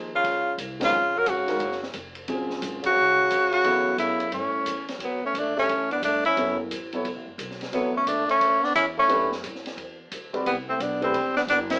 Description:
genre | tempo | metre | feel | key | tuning
modal jazz | 176 BPM | 4/4 | swing 65% on 8ths | D major from 5.0 s | A4 = 442 Hz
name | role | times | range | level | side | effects
warm grand piano | accompaniment | 0.0-11.1 s | Db3 to E5 | -29 LUFS | equal | none
upright bass | bass | 0.0-11.8 s | E1 to A2 | -40 LUFS | equal | none
clear trombone | second line | 0.1-11.8 s | A2 to C#4 | -30 LUFS | equal | none
breathy tenor saxophone | melody | 0.2-11.8 s | B3 to Bb4 | -22 LUFS | equal | none
open jazz drum kit | drums | 0.2-11.8 s | hi-hat, kick drum, ride cymbal, snare drum | -35 LUFS | equal | none
room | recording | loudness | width
moderate studio reverb, RT60 0.8 s | band playing live in one room, AM radio sound | -21 LUFS | side -37 dB against mid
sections
0.0-5.0 A section; 5.0-11.8 B section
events
band accent 0.8, 2.8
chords
0.0 Gbmaj9; 3.6 A7; 5.0 Dmaj9; 10.5 Cmaj9

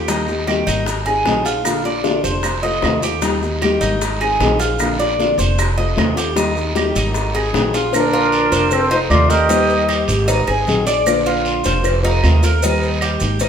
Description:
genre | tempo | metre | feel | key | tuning
latin, Cuban son and guajira | 153 BPM | 4/4 | straight | Bb major | A4 = 442 Hz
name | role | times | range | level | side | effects
nylon-string guitar | accompaniment | 0.0-13.4 s | C3 to Ab4 | -21 LUFS | left 3 dB | none
Cuban tres | arpeggios | 0.0-13.5 s | Eb4 to Eb5 | -21 LUFS | right 1 dB | none
upright bass | bass | 0.0-13.5 s | F1 to Eb2 | -21 LUFS | right 1 dB | none
bongos and cowbell | percussion | 0.1-13.5 s | none | -24 LUFS | left 4 dB | none
guiro | percussion | 0.1-13.5 s | none | -28 LUFS | right 4 dB | none
maracas | percussion | 0.1-13.5 s | none | -30 LUFS | right 2 dB | none
claves | percussion | 0.5-13.2 s | none | -28 LUFS | right 7 dB | none
trumpet with bucket mute | melody | 8.0-10.1 s | A4 to Eb5 | -18 LUFS | right 1 dB | none
silver concert flute | second line | 8.0-10.1 s | C4 to G4 | -20 LUFS | right 1 dB | none
room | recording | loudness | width
wet stone room reverb, RT60 1.3 s | band playing live in one room | -14 LUFS | side -8 dB against mid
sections
0.0-7.9 A section; 7.9-13.5 B section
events
none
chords
0.1 Eb; 0.9 Ab7; 1.7 Bb; 2.4 F7; 3.2 Eb; 4.0 Ab7; 4.8 Bb; 5.6 F7; 6.4 Eb; 7.2 Ab7; 7.9 Bb; 8.7 F7; 9.5 Eb; 10.3 Ab7; 11.1 Bb; 11.8 F7; 12.6 Eb

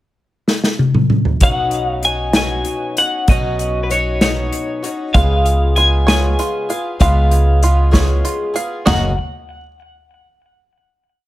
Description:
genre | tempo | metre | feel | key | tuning
indie folk with a building arrangement | 64 BPM (dotted quarters) | 6/8 | straight | unclear | A4 = 439 Hz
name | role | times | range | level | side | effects
unplugged drum kit | drums | 0.5-9.0 s | hi-hat, kick drum, ride cymbal, snare drum, toms | -16 LUFS | equal | none
twelve-string electric guitar | melody | 1.4-9.2 s | B4 to G#5 | -19 LUFS | left 1 dB | tremolo, tape echo
picked twelve-string acoustic guitar | accompaniment | 1.4-9.1 s | F#2 to G#4 | -22 LUFS | left 3 dB | none
upright bass | bass | 1.4-9.1 s | F#1 to C#2 | -16 LUFS | equal | none
bluegrass banjo | arpeggios | 5.2-9.1 s | E#4 to E#5 | -24 LUFS | right 5 dB | none
room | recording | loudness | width
light reverb, small room ambience | none | -13 LUFS | side -16 dB against mid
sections
0.0-1.4 pickup bar; 1.4-8.9 pre-chorus; 8.9-10.7 final chord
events
drum fill 0.5-1.4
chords
0.0 N.C.; 1.4 Badd9; 5.1 C#7; 8.9 F#6

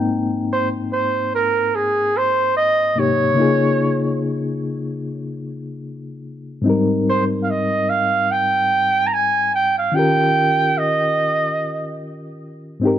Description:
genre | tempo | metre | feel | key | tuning
soul | 73 BPM | 4/4 | swing 58% on 16ths | Ab major | A4 = 439 Hz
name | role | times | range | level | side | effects
mellow reed electric piano | accompaniment | 0.0-13.0 s | Ab2 to Bb5 | -21 LUFS | left 2 dB | fast tremolo
warm flugelhorn | melody | 0.5-12.0 s | Ab4 to Bb5 | -17 LUFS | right 2 dB | none
room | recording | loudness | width
light reverb, small room reverb | none | -16 LUFS | side -10 dB against mid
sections
0.0-13.0 A section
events
none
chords
0.0 Abmaj7; 3.4 Db6; 6.7 Abmaj7; 9.9 Eb7

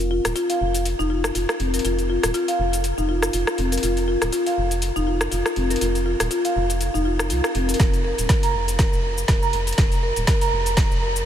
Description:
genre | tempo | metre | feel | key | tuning
afro house | 121 BPM | 4/4 | swing 56% on 16ths | unclear | A4 = 440 Hz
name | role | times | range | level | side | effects
round analog bass | bass | 0.0-11.2 s | Eb1 to C2 | -25 LUFS | equal | sidechain pumping
afro-pop drum kit | drums | 0.0-11.2 s | hi-hat, rim click, shaker, snare drum, toms | -26 LUFS | equal | high-pass filter on perc, small room ambience, high-pass filter on hats, high-pass filter on snare, high-pass filter on toms
marimba with soft mallets | arpeggios | 0.1-11.2 s | C4 to Bb5 | -23 LUFS | left 1 dB | sidechain pumping, ping-pong delay
electronic kick drum | drums | 7.8-10.9 s | none | -20 LUFS | equal | overdrive, small room ambience
room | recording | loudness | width
moderate huge ambient reverb, RT60 8.6 s | dreamy mix soaked in reverb | -19 LUFS | side -10 dB against mid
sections
0.0-11.3 A section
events
build-up 0.0-11.3; drum fill 7.8-11.3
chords
0.0 F5; 7.8 Bb5

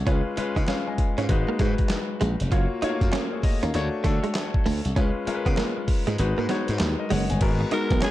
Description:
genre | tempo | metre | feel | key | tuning
R&B, new jack swing | 98 BPM | 4/4 | swing 63% on 16ths | unclear | A4 = 439 Hz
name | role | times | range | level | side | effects
clear concert grand piano | accompaniment | 0.0-8.1 s | G#3 to G#5 | -28 LUFS | left 4 dB | none
glassy slap bass | bass | 0.0-8.0 s | E#1 to D3 | -26 LUFS | equal | none
direct-recorded clean electric guitar | riff | 0.1-8.1 s | G#3 to E#4 | -30 LUFS | right 4 dB | ensemble chorus
boom bap sampler-style drum kit | drums | 0.1-8.1 s | crash cymbal, handclaps, hi-hat, kick drum, snare drum | -26 LUFS | equal | none
cowbell | percussion | 0.1-8.1 s | none | -42 LUFS | right 8 dB | none
growling alto saxophone | melody | 7.7-8.1 s | G#4 to A#4 | -27 LUFS | right 1 dB | none
room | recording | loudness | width
little or no reverb | dark, warm production | -22 LUFS | side -14 dB against mid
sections
0.0-7.4 A section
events
kick muted 6.2-7.4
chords
0.1 C#7; 1.3 G#m7; 2.5 F#maj7; 3.7 Dmaj7; 5.0 C#7; 6.2 G#m7; 7.4 G#m9

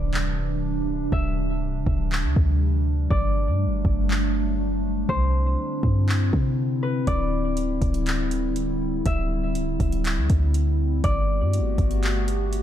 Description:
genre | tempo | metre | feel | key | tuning
hip hop, atmospheric cloud-rap | 121 BPM | 4/4 | half-time | unclear | A4 = 440 Hz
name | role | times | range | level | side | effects
concert harp | melody | 0.0-12.6 s | B4 to E5 | -32 LUFS | left 2 dB | low-pass filter, digital delay
warbly tape-like pad | sustained chords | 0.0-12.6 s | C3 to G4 | -27 LUFS | equal | chorus, built-in reverb, sidechain pumping
clean 808-style bass | bass | 0.0-12.6 s | C1 to C3 | -23 LUFS | equal | none
impact | sound effects | 0.0-1.1 s | none | barely audible | none | none
smooth R&B drum kit | drums | 0.1-12.6 s | handclaps, hi-hat, kick drum | -26 LUFS | equal | none
room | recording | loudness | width
digital ambience | dark, warm production | -21 LUFS | side -11 dB against mid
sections
0.0-12.6 A section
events
break 0.0-7.1; impact 0.0-1.1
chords
0.0 D9sus4; 3.1 Gsus2; 5.1 Cadd9; 11.0 Gmaj9

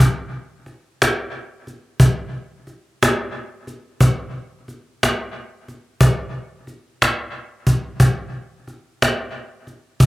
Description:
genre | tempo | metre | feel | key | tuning
blues | 60 BPM (dotted quarters) | 12/8 | straight | none | none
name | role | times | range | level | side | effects
cajon | drums | 0.0-10.1 s | none | -16 LUFS | equal | none
room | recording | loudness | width
little or no reverb | recorded outdoors, with no room sound | -17 LUFS | side -20 dB against mid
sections
0.0-10.1 A section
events
none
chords
none

